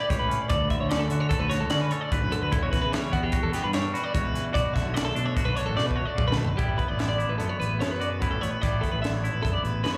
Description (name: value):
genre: math rock and midwest emo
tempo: 148 BPM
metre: 5/4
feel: straight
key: unclear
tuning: A4 = 441 Hz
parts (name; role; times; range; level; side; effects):
- twangy electric guitar; accompaniment; 0.0-10.0 s; D2 to B4; -34 LUFS; equal; slapback echo
- twelve-string electric guitar; arpeggios; 0.0-10.0 s; F#4 to E5; -32 LUFS; equal; digital delay, slapback echo
- fuzz fingered electric bass; bass; 0.1-10.0 s; A1 to D3; -31 LUFS; equal; overdrive
- crisp fusion drum kit; drums; 0.1-10.0 s; hi-hat, kick drum, snare drum, toms; -32 LUFS; equal; none
room: light reverb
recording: live gig heard through the venue's PA, club reverb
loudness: -26 LUFS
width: mono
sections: 0.0-6.6 A section; 6.6-10.0 B section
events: drum fill 5.8-6.6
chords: 0.5 Dmaj7; 2.5 Em9; 4.5 Bm7; 6.6 A9sus4